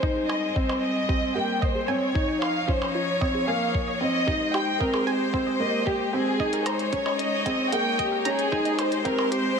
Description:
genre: piano and strings electronica.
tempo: 113 BPM.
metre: 4/4.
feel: straight.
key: Ab major.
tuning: A4 = 440 Hz.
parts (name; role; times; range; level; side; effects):
dark studio violin section; melody; 0.0-9.6 s; G4 to G5; -26 LUFS; equal; none.
rich string quartet; sustained chords; 0.0-9.6 s; F3 to Db5; -32 LUFS; left 2 dB; sidechain pumping.
analog pluck; arpeggios; 0.0-9.4 s; F4 to Bb5; -34 LUFS; right 4 dB; chorus, sidechain pumping, ping-pong delay.
dark upright piano; riff; 0.0-9.5 s; Bb3 to Eb4; -27 LUFS; equal; ping-pong delay.
electronic kick drum; drums; 0.0-9.2 s; none; -28 LUFS; equal; none.
electronic percussion blips and hi-hat; drums; 0.3-9.4 s; none; -33 LUFS; right 1 dB; none.
room: moderate huge ambient reverb, RT60 4.0 s.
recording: high-pass filter.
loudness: -22 LUFS.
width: side -6 dB against mid.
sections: 0.0-9.6 A section.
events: build-up 0.0-9.6; filter sweep on synth arpeggio sound 0.0-9.6; filter sweep 0.0-9.6.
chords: 0.0 Abmaj7; 2.2 Dbadd9; 4.3 Abmaj7; 6.4 Eb7sus4; 8.5 Abmaj7.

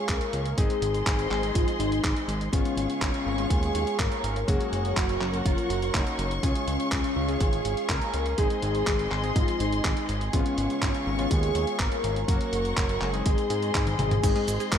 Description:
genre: italo disco.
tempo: 123 BPM.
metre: 4/4.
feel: straight.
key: Db major.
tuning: A4 = 437 Hz.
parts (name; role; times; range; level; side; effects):
wide unison lead; melody; 0.0-14.8 s; Db4 to Bb4; -30 LUFS; left 1 dB; wide subtle chorus, tape echo.
dark studio string section; sustained chords; 0.0-14.8 s; Ab4 to Db6; -33 LUFS; equal; none.
warm electric grand piano; stabs; 0.0-14.8 s; Gb3 to Ab4; -34 LUFS; left 4 dB; none.
fat analog bass; bass; 0.1-14.8 s; Gb1 to Ab2; -30 LUFS; equal; none.
dusty soul sampler-style drum kit; drums; 0.1-14.8 s; cabasa, crash cymbal, handclaps, hi-hat, toms; -32 LUFS; equal; gated reverb.
electronic kick drum; drums; 0.1-14.8 s; none; -27 LUFS; equal; none.
analog pluck; arpeggios; 14.2-14.8 s; Ab3 to Ab4; -34 LUFS; right 2 dB; none.
room: light reverb, digital ambience.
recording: none.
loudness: -24 LUFS.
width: side -8 dB against mid.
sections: 0.0-14.2 A section.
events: drum fill 13.9-14.2.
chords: 0.0 Db; 0.6 Ab; 2.5 Db7/Ab; 4.5 Gb; 6.4 Db; 8.4 Ab; 10.3 Db7/Ab; 12.3 Gb; 13.3 Ab.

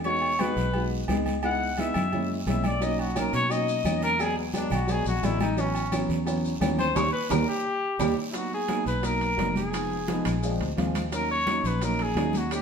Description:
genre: Afro-Cuban jazz.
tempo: 174 BPM.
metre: 4/4.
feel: straight.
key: G# minor.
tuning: A4 = 441 Hz.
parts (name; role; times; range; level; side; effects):
warm baby grand piano; accompaniment; 0.0-12.6 s; D#3 to G#5; -29 LUFS; right 1 dB; none.
fingered electric bass; bass; 0.0-12.6 s; E#1 to B2; -30 LUFS; equal; none.
agogo bells and timbales; percussion; 0.0-12.6 s; none; -36 LUFS; right 4 dB; none.
warm trumpet; melody; 0.1-12.6 s; B3 to F#5; -28 LUFS; left 2 dB; none.
congas; percussion; 0.1-12.6 s; none; -33 LUFS; left 1 dB; none.
guiro; percussion; 0.1-12.6 s; none; -44 LUFS; right 3 dB; none.
claves; percussion; 0.4-12.6 s; none; -45 LUFS; left 2 dB; none.
maracas; percussion; 2.8-12.6 s; none; -43 LUFS; left 4 dB; none.
room: wet stone room reverb, RT60 1.0 s.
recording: band playing live in one room.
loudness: -24 LUFS.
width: side -6 dB against mid.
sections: 0.0-8.3 A section; 8.3-12.6 B section.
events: trumpet solo 0.0-8.3; drum fill 7.0-8.3; band accent 7.0-8.3; grand piano fill 10.1-11.1.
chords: 0.1 Emaj7; 1.4 C#m7; 2.1 F#7; 2.8 Bmaj7; 4.2 E7; 5.6 A6; 7.0 D#; 8.3 G#m7; 9.7 Fm7b5; 10.4 A#7; 11.1 D#m7.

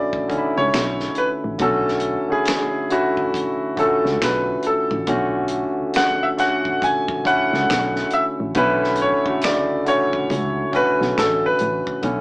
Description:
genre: R&B, neo-soul.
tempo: 69 BPM.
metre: 4/4.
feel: swing 61% on 16ths.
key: B dorian.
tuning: A4 = 441 Hz.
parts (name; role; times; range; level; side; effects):
bright baby grand piano; melody; 0.0-12.0 s; F#4 to G#5; -20 LUFS; equal; none.
barky tine electric piano; accompaniment; 0.0-12.2 s; C#3 to F#4; -22 LUFS; equal; overdrive.
tight funk drum kit; drums; 0.1-12.2 s; finger snaps, hi-hat, kick drum, snare drum; -27 LUFS; equal; none.
solid FM bass; bass; 0.3-12.2 s; A1 to C#2; -27 LUFS; equal; none.
room: moderate studio reverb, RT60 0.7 s.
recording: band playing live in one room, small speaker sound.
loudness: -17 LUFS.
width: side -26 dB against mid.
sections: 0.0-12.0 A section.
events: grand piano solo 0.0-12.0.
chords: 0.0 Bm11.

